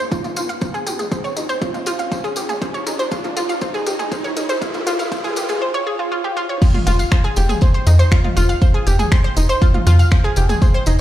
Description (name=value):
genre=melodic techno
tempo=120 BPM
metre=4/4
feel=straight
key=F minor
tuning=A4 = 441 Hz
part: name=analog pluck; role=arpeggios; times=0.0-10.9 s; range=Eb4 to F6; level=-21 LUFS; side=equal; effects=chorus, sidechain pumping, digital delay
part: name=riser and swell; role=sound effects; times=0.0-6.6 s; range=none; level=-29 LUFS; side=right 2 dB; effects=none
part: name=electronic kick drum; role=drums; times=0.1-10.7 s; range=none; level=-15 LUFS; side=equal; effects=none
part: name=techno drum kit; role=drums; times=0.1-11.0 s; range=crash cymbal, finger snaps, hi-hat, toms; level=-26 LUFS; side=equal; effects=sidechain pumping on hats, high-pass filter on hats, sidechain pumping on toms, high-pass filter on toms, sidechain pumping on cymbals, high-pass filter on cymbals, high-pass filter on snare, high-pass filter on room
part: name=tambourine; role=percussion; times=0.1-11.0 s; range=none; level=-32 LUFS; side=left 2 dB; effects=none
part: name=tight sequencer bass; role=bass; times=6.9-11.0 s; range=F1 to F2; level=-13 LUFS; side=equal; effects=sidechain pumping
room=little or no reverb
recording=played on a big sound system in a bare room, large studio reverb, high-pass filter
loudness=-15 LUFS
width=side -13 dB against mid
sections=0.0-6.6 A section; 6.6-11.0 B section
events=build-up 0.0-6.6; drum fill 0.0-5.6; riser 0.0-5.6; swell 5.6-6.6; drop 6.6-11.0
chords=0.0 Db (rootless); 6.6 Fm